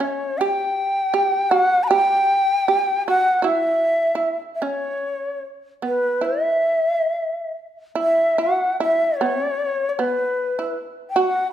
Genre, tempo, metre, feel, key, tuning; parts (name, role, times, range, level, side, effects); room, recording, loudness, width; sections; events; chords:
japanese traditional, Japanese chamber music; 68-80 BPM; 4/4; rubato; E kumoi; A4 = 441 Hz
breathy shakuhachi; melody; 0.0-11.5 s; B4 to B5; -19 LUFS; left 1 dB
shamisen; second line; 0.0-11.5 s; B3 to G4; -23 LUFS; right 4 dB
moderate recital hall reverb, RT60 1.5 s; minimal, uncompressed stereo recording; -18 LUFS; side -10 dB against mid
0.0-7.9 A section; 7.9-11.5 B section